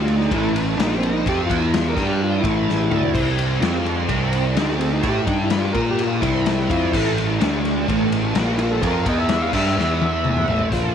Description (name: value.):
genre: psychedelic rock.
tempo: 127 BPM.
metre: 4/4.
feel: straight.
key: unclear.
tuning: A4 = 437 Hz.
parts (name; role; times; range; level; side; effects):
overdriven combo organ; melody; 0.0-10.9 s; C4 to F5; -24 LUFS; left 1 dB; slapback echo.
tonewheel organ; sustained chords; 0.0-10.7 s; G4 to C6; -34 LUFS; right 12 dB; slow rotary speaker, chorus vibrato.
crunchy overdriven guitar; riff; 0.0-10.9 s; A2 to Bb4; -22 LUFS; right 2 dB; flanger.
fuzz picked electric bass; bass; 0.0-10.9 s; A1 to Bb2; -23 LUFS; equal; overdrive.
raw garage drum kit; drums; 0.1-10.8 s; crash cymbal, hi-hat, kick drum, ride cymbal, snare drum, toms; -24 LUFS; left 4 dB; none.
room: light reverb, studio ambience.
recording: 1960s-style stereo.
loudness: -17 LUFS.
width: side -8 dB against mid.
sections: 0.0-10.7 A section.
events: transistor combo organ solo 0.0-10.7; drum fill 2.7-3.1, 9.8-10.7.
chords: 0.3 A5; 0.8 Bb5; 1.3 A5; 1.5 E5; 2.0 G5; 2.4 A5; 3.1 C; 3.6 F5; 4.1 C; 4.6 D5; 5.0 C; 5.3 G5; 5.7 Bb5; 6.2 C; 6.9 A5; 7.4 D5; 7.9 A5; 8.4 Bb5; 8.8 A5; 9.1 E5; 9.5 A5; 9.8 E5; 10.5 A5.